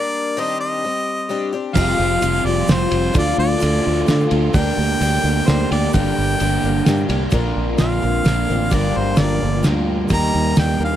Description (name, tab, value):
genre	folk rock and heartland rock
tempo	130 BPM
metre	3/4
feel	straight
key	G minor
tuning	A4 = 440 Hz
part	bright harmonica	melody	0.0-11.0 s	C5 to Bb5	-22 LUFS	left 1 dB	none
part	picked twelve-string acoustic guitar	accompaniment	0.0-11.0 s	G2 to Bb4	-23 LUFS	left 6 dB	none
part	crunchy overdriven guitar	riff	1.7-11.0 s	G2 to G4	-22 LUFS	right 4 dB	none
part	fingered electric bass	bass	1.8-11.0 s	F1 to D3	-20 LUFS	right 1 dB	none
part	cloth-damped thuddy drum kit	drums	1.8-10.7 s	crash cymbal, kick drum, ride cymbal, snare drum	-21 LUFS	right 1 dB	none
part	tube shaker	percussion	1.8-10.7 s	none	-38 LUFS	right 11 dB	none
room	little or no reverb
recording	dry, close 1970s-style studio recording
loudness	-16 LUFS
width	side -11 dB against mid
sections	0.0-7.3 A section; 7.3-11.0 B section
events	harmonica solo 7.3-11.0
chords	0.4 Cmadd9/Eb; 1.8 Fsus2; 3.2 Dm; 4.6 Gm/D; 5.9 Gm; 7.3 Bbadd9; 8.7 Gm7; 10.1 Ebmaj7